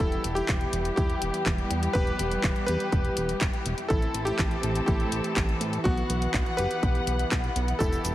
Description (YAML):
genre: italo disco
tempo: 123 BPM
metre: 4/4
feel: straight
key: E minor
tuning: A4 = 440 Hz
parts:
  - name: bright electric grand piano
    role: melody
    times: 0.0-8.1 s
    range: B3 to B4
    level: -30 LUFS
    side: equal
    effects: ping-pong delay
  - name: muted studio string section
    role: sustained chords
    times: 0.0-8.1 s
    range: E3 to F#5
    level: -32 LUFS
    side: left 1 dB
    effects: none
  - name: chorused synth bass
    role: bass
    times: 0.0-8.1 s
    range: E1 to A2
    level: -30 LUFS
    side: equal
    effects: none
  - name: electronic kick drum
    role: drums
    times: 0.0-7.9 s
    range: none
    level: -27 LUFS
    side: equal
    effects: none
  - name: house drum kit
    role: drums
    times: 0.0-8.1 s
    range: cabasa, handclaps, hi-hat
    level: -33 LUFS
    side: left 1 dB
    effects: none
room: light reverb, digital ambience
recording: heavily compressed radio sound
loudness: -24 LUFS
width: side -14 dB against mid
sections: 0.0-8.1 A section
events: none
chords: 0.0 Em; 3.9 Am; 5.9 Bsus4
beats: | 0.00 0.49 0.97 1.46 | 1.95 2.44 2.92 3.41 | 3.90 4.39 4.88 5.36 | 5.85 6.34 6.83 7.32 | 7.80